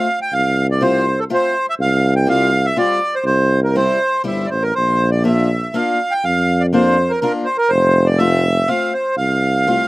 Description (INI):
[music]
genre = alpine folk, alpine dance band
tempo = 123 BPM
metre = 3/4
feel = rubato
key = F major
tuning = A4 = 444 Hz
[part]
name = accordion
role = melody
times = 0.0-9.9 s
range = A4 to G5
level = -16 LUFS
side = right 1 dB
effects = none
[part]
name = picked steel-string acoustic guitar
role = accompaniment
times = 0.0-9.9 s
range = G3 to F4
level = -20 LUFS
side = left 3 dB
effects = none
[part]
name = clear tuba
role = bass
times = 0.3-9.8 s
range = F1 to F2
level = -17 LUFS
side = equal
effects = none
[sound]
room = little or no reverb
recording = recorded outdoors, with no room sound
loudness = -14 LUFS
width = side -20 dB against mid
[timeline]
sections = 0.0-9.9 A section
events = none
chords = 0.0 F; 1.8 Csus4; 3.3 C; 4.8 Bb; 7.7 F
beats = | 0.33 0.81 1.30 | 1.79 2.28 2.76 | 3.25 3.75 4.25 | 4.75 5.25 5.75 | 6.25 6.74 7.23 | 7.71 8.20 8.68 | 9.17 9.66